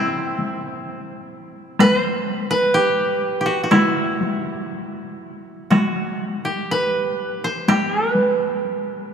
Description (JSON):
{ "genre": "japanese traditional, Japanese chamber music", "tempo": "61 BPM", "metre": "2/4", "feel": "uneven beats, rubato", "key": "E hirajoshi", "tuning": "A4 = 440 Hz", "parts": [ { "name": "koto", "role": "melody", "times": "0.0-9.1 s", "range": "C4 to C5", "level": "-20 LUFS", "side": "right 1 dB", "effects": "none" }, { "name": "taiko ensemble", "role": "percussion", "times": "0.4-8.4 s", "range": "none", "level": "-22 LUFS", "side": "left 1 dB", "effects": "none" } ], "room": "wet cathedral reverb, RT60 4.1 s", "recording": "dark, warm production", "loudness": "-18 LUFS", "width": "side -7 dB against mid", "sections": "0.0-9.1 A section", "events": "none", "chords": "none" }